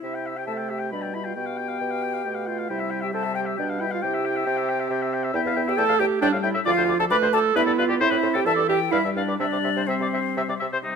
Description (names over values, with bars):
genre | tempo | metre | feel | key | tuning
quick classical-period movement for wind quintet | 135 BPM | 3/4 | rubato | C major | A4 = 440 Hz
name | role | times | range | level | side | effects
bright silver concert flute | melody | 0.0-11.0 s | C5 to B5 | -29 LUFS | left 11 dB | none
warm oboe | second line | 0.0-11.0 s | Eb4 to B5 | -27 LUFS | left 5 dB | none
dark French horn | accompaniment | 0.0-11.0 s | E3 to E4 | -31 LUFS | left 2 dB | none
mellow clarinet | accompaniment | 0.0-11.0 s | C4 to B4 | -26 LUFS | right 8 dB | none
warm bassoon | bass | 0.0-11.0 s | D2 to C3 | -30 LUFS | right 2 dB | none
room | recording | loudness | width
moderate scoring stage reverb, RT60 1.9 s | close, detailed microphones | -21 LUFS | side -6 dB against mid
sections
0.0-10.8 A section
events
none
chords
0.0 C; 0.9 G/B; 1.4 G7/B; 2.7 C; 3.6 G7/B; 4.0 C; 5.3 Em; 6.2 A5; 6.7 Dm; 7.6 G7; 8.0 Am; 8.5 Emadd11/G; 8.9 G5; 9.4 C5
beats
| 0.04 0.49 0.94 | 1.38 1.82 2.26 | 2.70 3.14 3.59 | 4.03 4.47 4.91 | 5.35 5.79 6.23 | 6.67 7.12 7.57 | 8.01 8.46 8.92 | 9.40 9.88 10.36 | 10.84